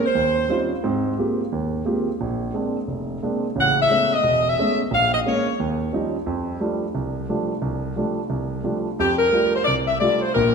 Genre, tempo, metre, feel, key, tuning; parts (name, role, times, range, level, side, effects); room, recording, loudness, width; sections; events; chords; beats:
jazz; 177 BPM; 4/4; swing 62% on 8ths; A4 = 442 Hz
warm concert grand piano; accompaniment; 0.0-10.5 s; E1 to G4; -22 LUFS; right 2 dB
clear saxophone section; melody; 0.1-0.7, 3.6-5.6, 9.0-10.5 s; G4 to Gb5; -19 LUFS; left 1 dB
wet concert hall reverb, RT60 1.8 s; minimal, uncompressed stereo recording, lossy compression artefacts; -20 LUFS; side -5 dB against mid
0.0-9.0 A section; 9.0-10.5 A section
0.2 Eb13; 0.8 Abmaj13; 2.2 Bb9; 3.5 Amaj9; 4.9 Bbm7; 5.6 Eb9; 6.3 F69
0.15 0.49 | 0.83 1.17 1.51 1.85 | 2.19 2.53 2.87 3.21 | 3.55 3.89 4.23 4.57 | 4.91 5.25 5.59 5.93 | 6.27 6.61 6.95 7.28 | 7.62 7.96 8.30 8.64 | 8.98 9.32 9.66 10.00 | 10.34